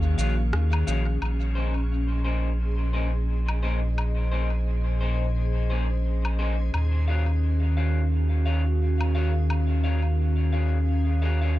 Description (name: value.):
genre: ambient dub.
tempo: 87 BPM.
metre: 4/4.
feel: swing 57% on 16ths.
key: Bb minor.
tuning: A4 = 439 Hz.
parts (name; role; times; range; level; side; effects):
warbly tape-like pad; sustained chords; 0.0-11.6 s; Bb2 to F5; -32 LUFS; left 1 dB; chorus, built-in reverb.
warm sub bass; bass; 0.0-11.6 s; Bb1 to Eb2; -23 LUFS; equal; none.
backwards swelling texture; texture; 0.0-11.6 s; Db4 to Ab4; -40 LUFS; right 1 dB; built-in reverb.
electric guitar through a small old amp; stabs; 0.2-11.5 s; Bb3 to F5; -34 LUFS; left 3 dB; dub echo.
electronic shaker, rim click and woodblock; drums; 0.2-9.7 s; none; -37 LUFS; left 1 dB; dub echo.
room: little or no reverb.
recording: echo-heavy mix.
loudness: -22 LUFS.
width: side -16 dB against mid.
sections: 0.0-1.2 A section; 1.2-11.6 B section.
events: none.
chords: 0.0 Ebm11; 1.2 Bbm11; 6.7 Ebm11.